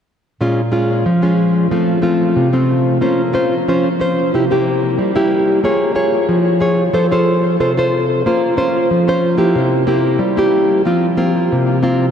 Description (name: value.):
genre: samba.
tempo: 92 BPM.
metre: 4/4.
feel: straight.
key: Bb harmonic minor.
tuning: A4 = 439 Hz.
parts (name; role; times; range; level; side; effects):
nylon-string guitar; solo; 0.4-12.1 s; Bb2 to Db5; -12 LUFS; equal; ping-pong delay.
room: wet huge ambient reverb, RT60 8.3 s.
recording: dreamy mix soaked in reverb, cassette tape.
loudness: -13 LUFS.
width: side -8 dB against mid.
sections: 0.4-5.6 A section; 5.6-12.1 B section.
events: none.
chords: 0.4 Bbm7; 1.7 F; 3.0 Bbmadd9; 4.3 C7; 5.6 Bbm7; 7.0 F; 8.3 Bbmadd9; 9.6 C7; 10.9 Fsus4.